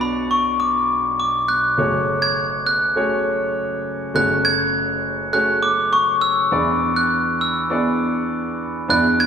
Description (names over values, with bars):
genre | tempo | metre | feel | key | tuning
pop | 101 BPM | 4/4 | straight | F# minor | A4 = 441 Hz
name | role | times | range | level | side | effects
glockenspiel with hard plastic mallets | melody | 0.0-9.3 s | B5 to G#6 | -18 LUFS | left 1 dB | none
warm baby grand piano | accompaniment | 0.0-9.3 s | F#1 to D5 | -22 LUFS | right 1 dB | none
room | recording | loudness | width
wet large studio reverb, RT60 1.4 s | band playing live in one room | -17 LUFS | side -7 dB against mid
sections
0.0-1.8 A section; 1.8-9.3 B section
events
none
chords
0.0 Bm; 1.8 F#madd9; 6.5 E7